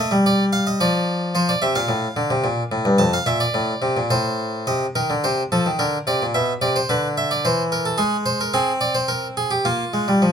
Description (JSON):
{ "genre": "classical, baroque-style two-part invention for harpsichord", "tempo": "109 BPM", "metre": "3/4", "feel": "straight", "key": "unclear", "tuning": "A4 = 441 Hz", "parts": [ { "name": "harpsichord", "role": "solo", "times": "0.0-10.3 s", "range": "F2 to A5", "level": "-18 LUFS", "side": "equal", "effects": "none" } ], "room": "light reverb", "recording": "close, detailed microphones", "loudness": "-18 LUFS", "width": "side -8 dB against mid", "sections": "0.0-4.7 A section; 4.7-10.3 B section", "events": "none", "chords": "0.0 Bb (rootless); 0.8 Dm/F; 1.3 F; 2.5 Bb5; 3.0 F; 4.1 Am; 4.7 F7/C (rootless); 5.8 Bb/D; 6.3 Bmadd11; 7.4 C/E; 8.0 Ab; 9.6 Bb5" }